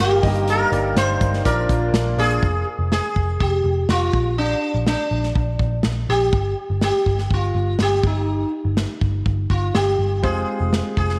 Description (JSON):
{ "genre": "piano-driven pop", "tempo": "123 BPM", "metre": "4/4", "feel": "straight", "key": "Bb mixolydian", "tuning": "A4 = 441 Hz", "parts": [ { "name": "sitar", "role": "melody", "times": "0.0-11.2 s", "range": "D4 to C5", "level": "-24 LUFS", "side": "equal", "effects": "slapback echo" }, { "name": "warm concert grand piano", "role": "accompaniment", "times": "0.0-2.5, 10.2-11.2 s", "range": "G2 to Eb5", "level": "-28 LUFS", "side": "equal", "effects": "none" }, { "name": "chorused pulse-width pad", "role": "sustained chords", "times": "0.0-2.4 s", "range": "G3 to Bb4", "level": "-32 LUFS", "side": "equal", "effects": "none" }, { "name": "vintage muted picked electric bass", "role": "bass", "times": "0.0-11.2 s", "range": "F1 to Bb1", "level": "-24 LUFS", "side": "equal", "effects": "none" }, { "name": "natural country drum kit", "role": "drums", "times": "0.2-11.2 s", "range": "hi-hat, kick drum, snare drum", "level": "-25 LUFS", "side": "equal", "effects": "none" } ], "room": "light reverb, small room ambience", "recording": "none", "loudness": "-20 LUFS", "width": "mono", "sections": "0.0-2.4 A section; 2.4-11.2 B section", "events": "none", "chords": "0.2 Eb/G; 1.5 Bb; 2.4 Fm; 4.1 Bb; 6.3 N.C.; 10.2 Fm" }